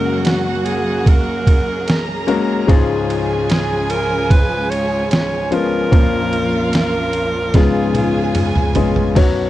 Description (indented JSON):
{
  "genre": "pop ballad",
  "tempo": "74 BPM",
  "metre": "4/4",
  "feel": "straight",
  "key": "unclear",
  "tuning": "A4 = 440 Hz",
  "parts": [
    { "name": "bright alto saxophone", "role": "melody", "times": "0.0-8.7 s", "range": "E#4 to C#5", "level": "-21 LUFS", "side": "right 1 dB", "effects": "none" },
    { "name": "dark studio violin section", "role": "second line", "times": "0.0-9.5 s", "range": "E#4 to A#5", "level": "-26 LUFS", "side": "right 4 dB", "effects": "none" },
    { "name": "clear concert grand piano", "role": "accompaniment", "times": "0.0-9.5 s", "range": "A#1 to C#5", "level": "-19 LUFS", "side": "left 4 dB", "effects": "none" },
    { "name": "warm studio string section", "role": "sustained chords", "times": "0.0-9.2 s", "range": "E#3 to A#4", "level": "-25 LUFS", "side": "right 2 dB", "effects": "none" },
    { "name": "trip hop sampler-style drum kit", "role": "drums", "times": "0.2-9.4 s", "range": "crash cymbal, kick drum, ride cymbal, snare drum, toms", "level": "-15 LUFS", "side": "right 1 dB", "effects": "none" }
  ],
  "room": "little or no reverb",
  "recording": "dry, close 1970s-style studio recording",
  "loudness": "-14 LUFS",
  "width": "side -14 dB against mid",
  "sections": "0.0-9.2 A section",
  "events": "drum fill 7.5-9.2",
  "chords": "0.0 F#add9; 2.7 C#; 5.9 A#m; 7.5 C#7"
}